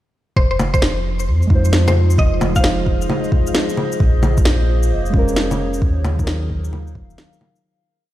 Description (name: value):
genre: future garage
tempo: 132 BPM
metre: 4/4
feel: swing 65% on 16ths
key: F phrygian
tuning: A4 = 440 Hz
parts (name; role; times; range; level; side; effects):
- mallet-like synth pluck; melody; 0.4-2.9 s; C5 to F5; -25 LUFS; left 1 dB; chorus, ping-pong delay
- warbly tape-like pad; sustained chords; 0.4-7.6 s; Eb3 to F5; -25 LUFS; equal; chorus, built-in reverb, sidechain pumping
- soft dub sub bass; bass; 0.4-7.2 s; Eb1 to F2; -18 LUFS; equal; sidechain pumping
- electronic kick drum; drums; 0.4-7.1 s; none; -17 LUFS; equal; overdrive
- electronic bongos, shaker and snare drum; drums; 0.6-7.6 s; none; -21 LUFS; equal; overdrive
- muted felt-like synth keys; accompaniment; 1.5-7.6 s; Gb3 to C5; -25 LUFS; right 1 dB; chorus, vintage 12-bit sampler grit, sidechain pumping, dub echo
room: little or no reverb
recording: played on a big sound system in a bare room, stone room reverb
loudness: -14 LUFS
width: side -14 dB against mid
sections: 0.4-7.6 groove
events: fade-out 5.2-7.6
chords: 0.4 Fm7; 4.0 Bbm7; 5.8 Ebmadd9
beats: | 0.37 0.82 1.27 1.73 | 2.18 2.64 3.09 3.55 | 4.00 4.46 4.91 5.37 | 5.82 6.28 6.73 7.18